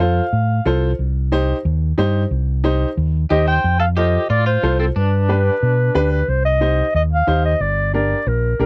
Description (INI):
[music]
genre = latin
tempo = 182 BPM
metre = 4/4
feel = straight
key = C dorian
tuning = A4 = 440 Hz
[part]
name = breathy clarinet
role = melody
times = 0.0-0.7, 3.3-8.7 s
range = A4 to G5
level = -22 LUFS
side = equal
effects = none
[part]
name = clear upright piano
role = accompaniment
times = 0.0-8.7 s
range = D4 to C5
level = -23 LUFS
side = equal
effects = none
[part]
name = fingered electric bass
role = bass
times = 0.0-8.7 s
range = G1 to B2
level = -20 LUFS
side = equal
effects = none
[part]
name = clean electric guitar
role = second line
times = 3.3-6.1 s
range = C4 to C5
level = -29 LUFS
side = equal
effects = tremolo
[sound]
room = little or no reverb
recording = none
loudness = -18 LUFS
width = mono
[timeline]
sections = 0.0-6.3 A section; 6.3-8.7 B section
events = none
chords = 0.0 F; 1.0 Cm; 3.6 Fadd9; 5.0 G; 6.3 Cm; 7.6 Gm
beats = 0.00 0.33 0.66 | 0.99 1.32 1.65 1.98 | 2.31 2.65 2.98 3.31 | 3.64 3.97 4.30 4.63 | 4.96 5.29 5.62 5.95 | 6.28 6.61 6.94 7.27 | 7.60 7.93 8.27 8.60